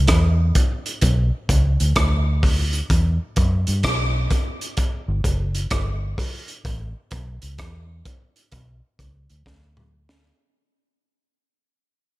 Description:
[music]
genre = dub reggae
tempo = 64 BPM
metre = 4/4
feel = swing 64% on 16ths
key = E dorian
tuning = A4 = 440 Hz
[part]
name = vintage muted fingered electric bass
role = bass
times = 0.0-10.3 s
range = G1 to G2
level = -20 LUFS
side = equal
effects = none
[part]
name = crunchy breakbeat drum kit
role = drums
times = 0.1-10.3 s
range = hi-hat, kick drum, rim click, snare drum, toms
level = -22 LUFS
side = equal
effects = none
[sound]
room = little or no reverb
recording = none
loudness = -18 LUFS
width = side -18 dB against mid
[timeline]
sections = 0.0-10.4 A section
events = fade-out 0.0-10.4; drum fill 9.5-10.4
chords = none

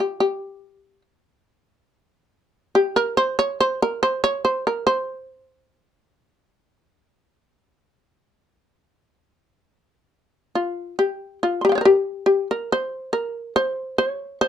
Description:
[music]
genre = japanese traditional, Japanese chamber music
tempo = 70 BPM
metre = 4/4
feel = rubato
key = C in sen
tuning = A4 = 440 Hz
[part]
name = shamisen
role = solo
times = 0.0-14.5 s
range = F4 to C6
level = -19 LUFS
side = left 1 dB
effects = none
[sound]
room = light reverb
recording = dark, warm production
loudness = -20 LUFS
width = side -9 dB against mid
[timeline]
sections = 0.0-10.1 A section; 10.1-14.5 B section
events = none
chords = none

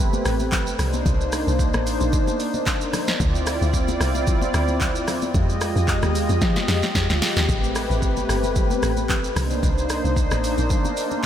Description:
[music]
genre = amapiano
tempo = 112 BPM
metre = 4/4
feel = swing 55% on 16ths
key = unclear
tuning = A4 = 438 Hz
[part]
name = warm analog pad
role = sustained chords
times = 0.0-11.3 s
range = Ab3 to Eb5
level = -24 LUFS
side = equal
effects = chorus
[part]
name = deep log drum bass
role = bass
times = 0.0-10.7 s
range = G1 to F3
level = -24 LUFS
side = equal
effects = none
[part]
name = deep house drum kit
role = drums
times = 0.1-11.3 s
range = handclaps, hi-hat, kick drum, rim click, shaker, snare drum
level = -23 LUFS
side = equal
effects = none
[part]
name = congas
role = percussion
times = 0.1-11.3 s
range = none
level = -32 LUFS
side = left 6 dB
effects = none
[sound]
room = moderate huge ambient reverb, RT60 4.8 s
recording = dreamy mix soaked in reverb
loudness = -19 LUFS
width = side -10 dB against mid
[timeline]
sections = 0.0-11.3 A section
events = drum fill 6.4-7.5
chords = 0.0 Am9; 0.8 Cm9; 3.2 Dm9; 5.3 Fm9; 7.5 Am9; 9.4 Cm9

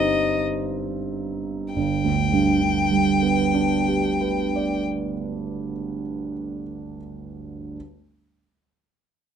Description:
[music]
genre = classical, romantic duo for violin and grand piano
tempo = 32 BPM (dotted quarters)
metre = 6/8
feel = rubato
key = G major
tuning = A4 = 440 Hz
[part]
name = rich violin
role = melody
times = 0.0-4.8 s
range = Eb5 to G5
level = -25 LUFS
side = left 5 dB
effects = none
[part]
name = warm concert grand piano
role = accompaniment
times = 0.0-7.8 s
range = G1 to D5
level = -23 LUFS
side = right 3 dB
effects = none
[sound]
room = light reverb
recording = dark, warm production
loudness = -21 LUFS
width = side -8 dB against mid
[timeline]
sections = 0.0-1.7 A section; 1.7-5.5 B section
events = slowing down 0.0-1.7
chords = 0.0 Cm/G; 1.7 G

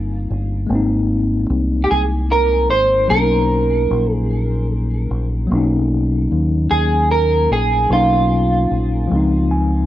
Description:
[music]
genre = slow six-eight R&B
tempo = 50 BPM (dotted quarters)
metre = 6/8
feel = straight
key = unclear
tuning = A4 = 441 Hz
[part]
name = tine electric piano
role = accompaniment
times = 0.0-9.9 s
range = F3 to Ab5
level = -20 LUFS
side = left 2 dB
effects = overdrive, fast stereo tremolo
[part]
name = deep dub fingered electric bass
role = bass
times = 0.0-9.9 s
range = G1 to D#2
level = -18 LUFS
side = equal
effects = none
[part]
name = electric guitar at the edge of break-up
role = melody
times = 1.8-9.5 s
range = F4 to C5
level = -17 LUFS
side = right 2 dB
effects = wide subtle chorus, tape echo
[sound]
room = digital ambience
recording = home recording on cassette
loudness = -14 LUFS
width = side -13 dB against mid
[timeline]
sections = 0.0-9.9 A section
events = tine electric piano fill 9.1-9.9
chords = 0.0 Abmaj9; 3.1 Bmaj9; 9.1 Dbmaj9

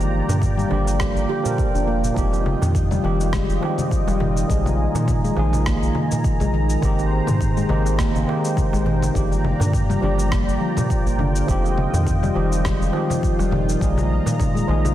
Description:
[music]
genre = organic downtempo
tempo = 103 BPM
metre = 4/4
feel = swing 55% on 16ths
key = F dorian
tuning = A4 = 437 Hz
[part]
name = tine electric piano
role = accompaniment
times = 0.0-14.9 s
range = Eb3 to Bb4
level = -27 LUFS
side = right 2 dB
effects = overdrive, fast stereo tremolo, sidechain pumping, digital delay
[part]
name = warm analog pad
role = sustained chords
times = 0.0-14.9 s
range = Ab3 to Bb5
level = -28 LUFS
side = equal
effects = chorus, sidechain pumping
[part]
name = round analog bass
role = bass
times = 0.0-14.9 s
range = F1 to Bb2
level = -22 LUFS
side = equal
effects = sidechain pumping
[part]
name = electronic cabasa, rim click and congas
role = drums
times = 0.0-14.9 s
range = none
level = -29 LUFS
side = left 2 dB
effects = overdrive
[part]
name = darbuka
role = percussion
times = 0.0-14.9 s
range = none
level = -31 LUFS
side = right 2 dB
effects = none
[part]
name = handpan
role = arpeggios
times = 0.3-14.9 s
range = D3 to G4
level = -24 LUFS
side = left 1 dB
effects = digital delay
[part]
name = electronic kick drum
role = drums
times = 0.4-14.5 s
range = none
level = -23 LUFS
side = equal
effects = none
[sound]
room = light reverb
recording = dense, heavily limited modern master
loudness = -18 LUFS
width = side -13 dB against mid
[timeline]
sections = 0.0-14.9 A section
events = none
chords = 0.0 Gm7; 2.2 Fm9; 4.5 Bb7sus4; 6.8 Abmaj9; 9.2 Gm7; 11.5 Fm9; 13.8 Bb7sus4

